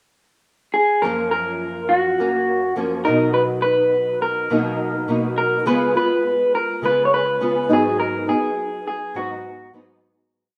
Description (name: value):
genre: indie pop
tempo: 103 BPM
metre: 4/4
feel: straight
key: F# major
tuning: A4 = 440 Hz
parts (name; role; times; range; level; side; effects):
- electric guitar through a small old amp; melody; 0.7-9.7 s; F#4 to C#5; -22 LUFS; equal; subtle chorus, slapback echo
- nylon-string guitar; accompaniment; 1.0-10.6 s; F#2 to E#4; -25 LUFS; equal; ensemble chorus, vibrato effect
room: moderate plate reverb, RT60 2.8 s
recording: rough home demo mix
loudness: -20 LUFS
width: mono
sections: 0.0-1.0 pickup bar; 1.0-10.3 verse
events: fade-out 8.0-10.3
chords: 0.0 N.C.; 1.0 F#maj7; 3.1 Bmaj7; 5.7 C#7; 7.7 G#m7